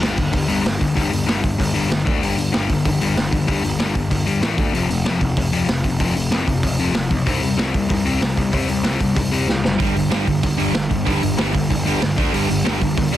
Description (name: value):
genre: punk rock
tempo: 190 BPM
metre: 4/4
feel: straight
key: unclear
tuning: A4 = 444 Hz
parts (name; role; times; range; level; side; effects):
- overdriven electric guitar; riff; 0.0-13.2 s; F2 to D4; -21 LUFS; left 4 dB; none
- fuzz picked electric bass; bass; 0.0-13.2 s; F1 to D2; -24 LUFS; right 1 dB; overdrive
- raw garage drum kit; drums; 0.0-13.2 s; hi-hat, kick drum, snare drum; -21 LUFS; right 1 dB; soft clipping on kick
- crunchy overdriven guitar; riff; 9.8-13.2 s; G2 to D4; -23 LUFS; right 14 dB; none
room: light reverb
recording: dense, heavily limited modern master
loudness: -17 LUFS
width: side -12 dB against mid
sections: 0.0-13.2 A section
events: drum fill 9.5-9.8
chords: 0.0 G5; 2.1 D5; 2.2 G5; 4.4 A5; 4.6 D5; 4.7 F5; 7.3 C5; 9.8 G5; 12.2 D5; 12.3 G5